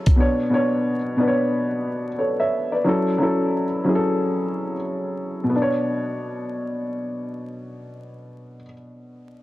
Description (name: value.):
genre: hip hop.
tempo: 90 BPM.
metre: 4/4.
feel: swing 59% on 16ths.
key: B minor.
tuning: A4 = 440 Hz.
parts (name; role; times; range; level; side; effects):
dark upright piano; accompaniment; 0.0-9.4 s; B2 to E5; -21 LUFS; equal; cassette tape, high-pass filter, low-pass filter.
room: light reverb, studio ambience.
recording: dense, heavily limited modern master, vinyl crackle.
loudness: -20 LUFS.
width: side -16 dB against mid.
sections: 0.0-5.5 A section; 5.5-8.2 B section.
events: none.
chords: 0.2 Bmadd9; 2.9 F#m7; 5.5 Bmadd9.